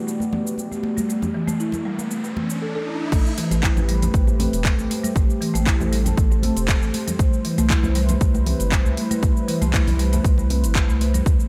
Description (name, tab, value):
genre	afro house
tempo	118 BPM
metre	4/4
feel	straight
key	A dorian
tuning	A4 = 440 Hz
part	dark analog pad	sustained chords	0.0-11.5 s	G3 to D5	-33 LUFS	equal	chorus, sidechain pumping
part	buzzing marimba with soft mallets	arpeggios	0.0-11.4 s	E3 to A4	-28 LUFS	equal	sidechain pumping, analog delay
part	riser	sound effects	0.7-3.1 s	none	-36 LUFS	equal	none
part	house drum kit	drums	0.1-11.5 s	cabasa, crash cymbal, handclaps, hi-hat	-31 LUFS	equal	overdrive, studio reverb
part	congas	percussion	0.2-11.4 s	none	-31 LUFS	equal	none
part	warm sub bass	bass	3.1-11.4 s	E1 to D2	-24 LUFS	equal	sidechain pumping
part	electronic kick drum	drums	3.1-11.4 s	none	-21 LUFS	equal	overdrive, studio reverb
room	light reverb, digital ambience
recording	none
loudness	-21 LUFS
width	mono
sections	0.0-3.1 A section; 3.1-11.5 B section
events	riser 0.7-3.1; drop 3.1-11.5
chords	0.0 Gmaj7; 3.1 Am9; 7.2 Cmaj7